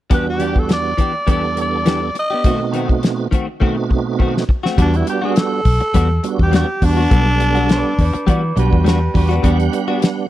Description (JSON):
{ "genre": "straight-eighth soul blues", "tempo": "103 BPM", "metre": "4/4", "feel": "swing 54% on 16ths", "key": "E minor", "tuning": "A4 = 436 Hz", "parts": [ { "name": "growling tenor saxophone", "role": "melody", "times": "0.1-8.5 s", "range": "D4 to D#5", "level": "-20 LUFS", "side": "equal", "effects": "none" }, { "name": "tonewheel organ", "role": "accompaniment", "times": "0.1-10.3 s", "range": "E2 to F#5", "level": "-21 LUFS", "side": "right 6 dB", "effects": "slow rotary speaker, overdrive, chorus vibrato" }, { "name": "direct-recorded clean electric guitar", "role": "stabs", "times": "0.1-10.1 s", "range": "D#3 to G4", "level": "-22 LUFS", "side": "left 5 dB", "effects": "analog chorus" }, { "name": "damped 70s drum kit", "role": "drums", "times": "0.1-10.2 s", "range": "hi-hat, kick drum, snare drum", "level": "-16 LUFS", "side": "left 1 dB", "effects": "none" }, { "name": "vintage muted fingered electric bass", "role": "bass", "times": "4.8-9.7 s", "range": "B1 to E3", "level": "-16 LUFS", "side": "equal", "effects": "none" }, { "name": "electric guitar through a small old amp", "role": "second line", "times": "7.7-10.0 s", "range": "G4 to D5", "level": "-24 LUFS", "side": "right 2 dB", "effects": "none" } ], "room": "studio reverb", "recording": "dry, close 1970s-style studio recording", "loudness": "-14 LUFS", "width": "side -14 dB against mid", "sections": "0.1-4.8 A section; 4.8-10.3 B section", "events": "drum fill 3.6-4.8", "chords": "0.1 Em7; 2.4 B7b9; 4.8 Em9" }